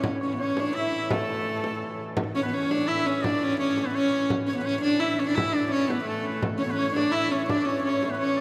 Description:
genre	medieval dance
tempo	169 BPM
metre	3/4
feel	straight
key	A major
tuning	A4 = 440 Hz
part	rich viola da gamba	melody	0.0-8.4 s	A3 to E4	-28 LUFS	equal	none
part	hammered dulcimer	second line	0.0-4.0, 6.6-8.4 s	A4 to E5	-37 LUFS	equal	none
part	pipe organ, strings celeste	drone	0.0-8.4 s	A2 to E3	-40 LUFS	equal	none
part	frame drum	percussion	0.0-8.4 s	none	-36 LUFS	equal	none
part	bright shawm	second line	0.4-8.4 s	A4 to E5	-35 LUFS	equal	none
room	wet cathedral reverb, RT60 4.2 s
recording	none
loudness	-26 LUFS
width	mono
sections	0.0-2.2 A section; 2.2-8.4 A section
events	none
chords	none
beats	| 0.04 0.40 0.75 | 1.11 1.47 1.82 | 2.18 2.53 2.89 | 3.24 3.60 3.95 | 4.31 4.66 5.02 | 5.37 5.73 6.08 | 6.43 6.79 7.14 | 7.49 7.85 8.20

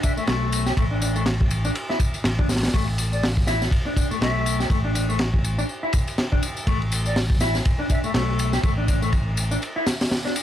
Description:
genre	breakbeat, breaks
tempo	122 BPM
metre	4/4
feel	swing 57% on 16ths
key	unclear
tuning	A4 = 439 Hz
part	mellow silver concert flute	melody	0.0-8.1 s	D5 to E5	-34 LUFS	equal	telephone sound, ping-pong delay
part	mellow electric guitar	riff	0.0-10.3 s	A3 to G4	-27 LUFS	left 2 dB	tube saturation, vintage 12-bit sampler grit, low-pass filter, ping-pong delay
part	crunchy breakbeat drum kit	drums	0.0-10.4 s	hi-hat, kick drum, ride cymbal, snare drum	-23 LUFS	equal	none
part	tambourine	drums	0.0-10.4 s	none	-35 LUFS	left 6 dB	none
part	fingered electric bass	bass	0.2-9.6 s	A1 to B1	-24 LUFS	equal	none
room	small room ambience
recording	none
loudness	-20 LUFS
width	side -11 dB against mid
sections	0.0-10.4 A section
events	none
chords	none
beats	0.28 | 0.77 1.26 1.75 2.25 | 2.74 3.23 3.72 4.21 | 4.70 5.20 5.69 6.18 | 6.67 7.16 7.66 8.15 | 8.64 9.13 9.62 10.11

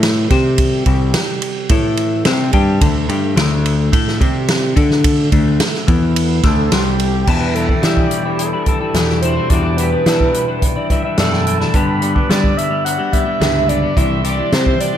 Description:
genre	psychedelic rock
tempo	108 BPM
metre	4/4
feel	straight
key	E minor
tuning	A4 = 440 Hz
part	tonewheel organ	sustained chords	0.0-15.0 s	C3 to C6	-25 LUFS	right 6 dB	stopped rotary speaker
part	semi-hollow electric guitar	riff	0.0-15.0 s	E2 to D5	-18 LUFS	left 5 dB	flanger
part	growling picked electric bass	bass	0.0-14.7 s	C2 to G3	-18 LUFS	right 1 dB	overdrive
part	vintage drum kit	drums	0.0-14.9 s	crash cymbal, hi-hat, kick drum, ride cymbal, snare drum	-17 LUFS	equal	none
part	overdriven synth lead	melody	6.5-15.0 s	G4 to F#5	-20 LUFS	right 3 dB	phaser, analog delay
room	moderate lush hall reverb, RT60 1.5 s, small room reverb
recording	dreamy mix soaked in reverb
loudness	-13 LUFS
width	side -10 dB against mid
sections	0.0-7.3 A section; 7.3-15.0 B section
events	none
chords	0.3 C5; 1.7 A5; 2.3 C5; 2.8 D5; 4.2 C5; 4.8 D5; 5.9 E5; 6.4 D5; 6.7 C5; 7.3 Em7; 11.7 G; 14.0 C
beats	0.03 | 0.58 1.14 1.70 2.26 | 2.82 3.38 3.93 4.49 | 5.05 5.60 6.16 6.72 | 7.28 7.83 8.39 8.95 | 9.51 10.06 10.62 11.18 | 11.74 12.29 12.85 13.41 | 13.97 14.53

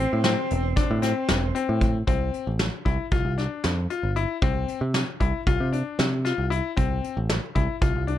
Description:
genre	progressive instrumental, band music in an uneven meter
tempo	230 BPM (eighths)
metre	9/8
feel	straight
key	unclear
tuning	A4 = 441 Hz
part	warm alto saxophone	second line	0.0-1.8 s	C4	-31 LUFS	right 14 dB	analog delay
part	bright concert grand piano	arpeggios	0.0-8.2 s	C4 to F4	-28 LUFS	left 8 dB	none
part	picked electric bass	bass	0.0-8.2 s	E1 to C3	-25 LUFS	right 1 dB	none
part	soft brush drum kit	drums	0.2-8.2 s	hi-hat, kick drum, snare drum	-26 LUFS	equal	none
part	tube shaker	percussion	0.8-1.4 s	none	-46 LUFS	right 18 dB	none
room	little or no reverb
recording	dark, warm production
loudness	-22 LUFS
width	side -12 dB against mid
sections	0.0-2.1 A section; 2.1-8.2 B section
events	none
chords	0.0 Am/E; 2.1 Am; 3.1 G7sus4; 4.4 C; 5.5 Cadd9; 6.8 Am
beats	0.25 0.51 0.77 1.03 1.29 1.55 1.81 | 2.07 2.33 2.60 2.85 3.12 3.38 3.64 3.90 4.16 | 4.42 4.68 4.94 5.20 5.46 5.72 5.99 6.25 6.51 | 6.77 7.03 7.29 7.55 7.81 8.07

